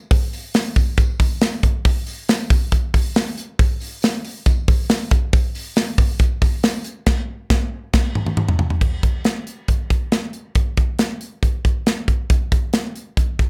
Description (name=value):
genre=indie pop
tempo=138 BPM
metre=4/4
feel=straight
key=none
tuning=none
part: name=modern studio drum kit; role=drums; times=0.1-13.5 s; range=crash cymbal, hi-hat, kick drum, snare drum, toms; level=-19 LUFS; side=equal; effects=none
part: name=tambourine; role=percussion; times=0.1-6.7 s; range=none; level=-43 LUFS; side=equal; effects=none
room=light reverb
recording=none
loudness=-20 LUFS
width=mono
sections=0.0-8.8 A section; 8.8-13.5 B section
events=drum fill 7.1-8.8; band accent 7.1-8.8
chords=none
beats=| 0.11 0.54 0.98 1.42 | 1.85 2.29 2.72 3.16 | 3.59 4.03 4.46 4.90 | 5.33 5.77 6.20 6.64 | 7.07 7.51 7.94 8.38 | 8.81 9.25 9.69 10.12 | 10.56 10.99 11.43 11.87 | 12.30 12.74 13.18